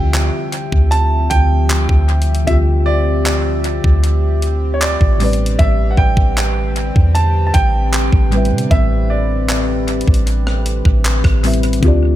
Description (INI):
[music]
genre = contemporary R&B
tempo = 77 BPM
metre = 4/4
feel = straight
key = unclear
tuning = A4 = 441 Hz
[part]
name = warm concert grand piano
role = melody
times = 0.0-11.4 s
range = C#5 to A5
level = -22 LUFS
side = right 3 dB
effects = tape echo
[part]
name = muted felt-like synth keys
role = accompaniment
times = 0.0-12.2 s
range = A2 to G5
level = -22 LUFS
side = left 3 dB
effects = chorus, tape echo
[part]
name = chorused pulse-width pad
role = sustained chords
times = 0.0-12.2 s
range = D3 to E5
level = -24 LUFS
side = left 1 dB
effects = sidechain pumping
[part]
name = clean 808-style bass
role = bass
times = 0.0-12.2 s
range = A1 to C3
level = -15 LUFS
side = equal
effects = none
[part]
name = clean 12-bit digital drum machine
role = drums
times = 0.1-12.0 s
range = handclaps, hi-hat, kick drum, rim click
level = -17 LUFS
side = equal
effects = tape echo
[sound]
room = little or no reverb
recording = echo-heavy mix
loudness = -12 LUFS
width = side -13 dB against mid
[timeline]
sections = 0.0-12.2 A section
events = none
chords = 0.0 Dm11; 5.2 Am11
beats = 0.14 0.92 1.70 | 2.48 3.25 4.03 4.81 | 5.59 6.37 7.15 7.93 | 8.71 9.49 10.27 11.05 | 11.83